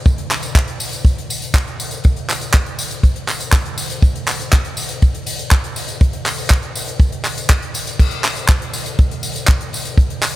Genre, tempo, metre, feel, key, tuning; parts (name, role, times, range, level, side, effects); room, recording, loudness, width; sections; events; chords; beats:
italo disco; 121 BPM; 4/4; straight
kick drum; drums; 0.1-10.1 s; -16 LUFS; equal
swinging big-band drum kit; drums; 0.1-10.3 s; crash cymbal, handclaps, hi-hat, tambourine; -20 LUFS; equal
little or no reverb; -15 LUFS; side -16 dB against mid
0.0-10.4 A section
| 0.06 0.56 1.05 1.55 | 2.04 2.54 3.04 3.53 | 4.03 4.52 5.02 5.51 | 6.01 6.51 7.00 7.50 | 7.99 8.49 8.99 9.48 | 9.98